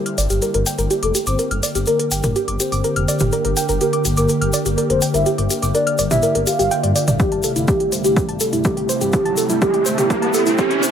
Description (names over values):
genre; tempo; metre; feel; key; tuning
melodic techno; 124 BPM; 4/4; straight; G dorian; A4 = 440 Hz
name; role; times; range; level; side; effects
soft octave-layered synth lead; melody; 0.0-10.8 s; G4 to F5; -21 LUFS; equal; chorus, phaser, cassette tape, sidechain pumping, digital delay
lush unison pad; sustained chords; 0.0-10.9 s; C3 to G4; -24 LUFS; right 1 dB; chorus, sidechain pumping
soft round pluck; arpeggios; 0.1-10.9 s; E4 to F6; -22 LUFS; right 1 dB; chorus, cassette tape, sidechain pumping, tape echo
deep house drum kit; drums; 0.1-10.9 s; hi-hat, toms; -24 LUFS; equal; sidechain pumping on hats, sidechain pumping on toms
dark detuned saw bass; bass; 0.2-10.8 s; F1 to G2; -23 LUFS; equal; sidechain pumping
egg shaker; percussion; 0.2-10.9 s; none; -27 LUFS; left 3 dB; none
electronic kick drum; drums; 7.2-10.7 s; none; -20 LUFS; equal; none
riser; sound effects; 8.9-10.9 s; none; -24 LUFS; right 1 dB; none
room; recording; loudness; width
light reverb; high-pass filter; -16 LUFS; side -8 dB against mid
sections
0.0-10.9 A section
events
build-up 0.0-10.9; filter sweep on synth arpeggio sound 0.0-10.9; filter sweep on analog synth pad 0.0-10.9; drum fill 7.2-10.9; riser 8.9-10.9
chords
0.0 Gm; 7.2 C6/G